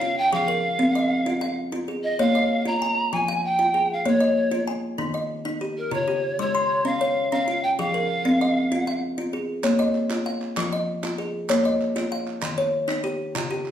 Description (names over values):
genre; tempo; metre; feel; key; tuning
southern african traditional, mbira-style interlocking cycle; 129 BPM (dotted quarters); 12/8; straight; Bb dorian; A4 = 438 Hz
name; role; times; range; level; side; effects
breathy polished pan flute; melody; 0.0-9.0 s; Bb4 to Bb5; -23 LUFS; equal; none
kalimba; arpeggios; 0.0-13.7 s; Db3 to C6; -23 LUFS; left 1 dB; none
group handclap; percussion; 9.6-13.7 s; none; -34 LUFS; right 4 dB; none
room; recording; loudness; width
wet large studio reverb, RT60 0.8 s; band playing live in one room; -21 LUFS; side -10 dB against mid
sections
0.0-9.6 A section; 9.6-13.7 B section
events
none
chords
0.3 Fm; 2.2 Bbm; 3.1 Fm; 4.1 Bbm; 5.0 Eb; 5.9 Db; 7.8 Fm; 9.6 Bbm; 10.6 Fm; 11.5 Bbm; 12.4 Eb